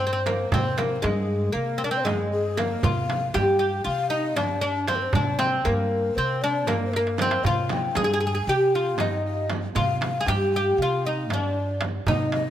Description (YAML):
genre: Turkish makam ensemble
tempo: 234 BPM (eighths)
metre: 9/8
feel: straight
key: C makam ussak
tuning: A4 = 440 Hz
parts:
  - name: oud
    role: melody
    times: 0.0-12.5 s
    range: Ab3 to Ab4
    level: -24 LUFS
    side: equal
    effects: none
  - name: breathy mellow ney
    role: second line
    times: 0.0-12.5 s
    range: Ab4 to Ab5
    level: -30 LUFS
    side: left 4 dB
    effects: none
  - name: upright bass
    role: bass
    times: 0.0-12.5 s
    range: G2 to C3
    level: -29 LUFS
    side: right 1 dB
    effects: none
  - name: darbuka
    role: percussion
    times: 0.3-12.4 s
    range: none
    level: -28 LUFS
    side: right 2 dB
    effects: none
  - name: frame drum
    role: percussion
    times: 0.3-12.5 s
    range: none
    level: -32 LUFS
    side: right 4 dB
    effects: none
room: moderate plate reverb, RT60 3.5 s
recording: none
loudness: -22 LUFS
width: side -11 dB against mid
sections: 0.0-12.5 A section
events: drum fill 6.9-7.4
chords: none